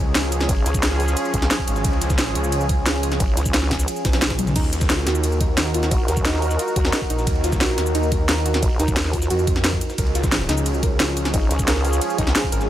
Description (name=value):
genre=dark technical drum and bass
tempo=177 BPM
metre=4/4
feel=straight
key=unclear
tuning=A4 = 440 Hz
part: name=sweeping resonant pad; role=sustained chords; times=0.0-12.7 s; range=F3 to Bb4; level=-29 LUFS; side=right 1 dB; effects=chorus, sidechain pumping
part: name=wide detuned saw bass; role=bass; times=0.0-12.7 s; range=Ab1 to F2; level=-23 LUFS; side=equal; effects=chorus, tube saturation
part: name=deep dark ambient pad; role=texture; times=0.0-12.7 s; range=F4 to Bb5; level=-29 LUFS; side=right 2 dB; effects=chorus, built-in reverb, sidechain pumping
part: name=jungle sampler-style drum kit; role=drums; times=0.1-12.7 s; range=ride cymbal, snare drum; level=-33 LUFS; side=equal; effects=none
part: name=drum and bass drum kit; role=drums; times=0.2-12.7 s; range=crash cymbal, hi-hat, ride cymbal, shaker, snare drum, toms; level=-24 LUFS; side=equal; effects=overdrive
part: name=vowel-sweep wobble bass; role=bass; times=0.5-3.9, 5.9-9.3, 11.3-12.3 s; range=Ab1 to Eb2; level=-22 LUFS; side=equal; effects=chorus
part: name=electronic kick drum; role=drums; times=0.5-12.5 s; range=none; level=-23 LUFS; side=equal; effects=overdrive
part: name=soft round pluck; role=arpeggios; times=4.6-12.6 s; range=Eb4 to Bb4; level=-28 LUFS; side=equal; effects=chorus, sidechain pumping, tape echo
room=digital ambience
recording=none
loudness=-18 LUFS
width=side -12 dB against mid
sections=0.0-12.7 A section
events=drum fill 4.4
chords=0.0 Db; 4.6 Ebm; 10.0 Db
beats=0.15 | 0.49 0.83 1.17 1.51 | 1.85 2.19 2.52 2.86 | 3.20 3.54 3.88 4.22 | 4.56 4.90 5.24 5.58 | 5.91 6.25 6.59 6.93 | 7.27 7.61 7.95 8.29 | 8.62 8.96 9.30 9.64 | 9.98 10.32 10.66 11.00 | 11.34 11.68 12.02 12.35 | 12.69